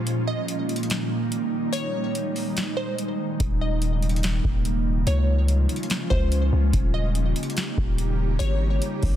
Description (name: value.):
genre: hip hop, atmospheric cloud-rap.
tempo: 144 BPM.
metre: 4/4.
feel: half-time.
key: Eb mixolydian.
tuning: A4 = 440 Hz.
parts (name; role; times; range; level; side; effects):
glassy wavetable pluck; melody; 0.0-9.2 s; C5 to Eb5; -32 LUFS; left 1 dB; chorus, digital delay.
ethereal airy pad; sustained chords; 0.0-9.2 s; Bb2 to G4; -27 LUFS; right 1 dB; ensemble chorus, built-in reverb, sidechain pumping.
booming analog drum machine; drums; 0.1-9.2 s; hi-hat, kick drum, snare drum; -26 LUFS; equal; none.
long sustained 808-style bass; bass; 3.4-9.2 s; Eb1 to Db2; -22 LUFS; equal; none.
room: little or no reverb.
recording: dense, heavily limited modern master.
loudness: -22 LUFS.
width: side -11 dB against mid.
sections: 0.0-9.2 A section.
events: break 0.0-3.4.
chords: 0.1 Eb; 1.7 Ab5; 3.4 Eb6; 5.1 Dbmaj7; 6.7 Eb; 8.4 Ab5.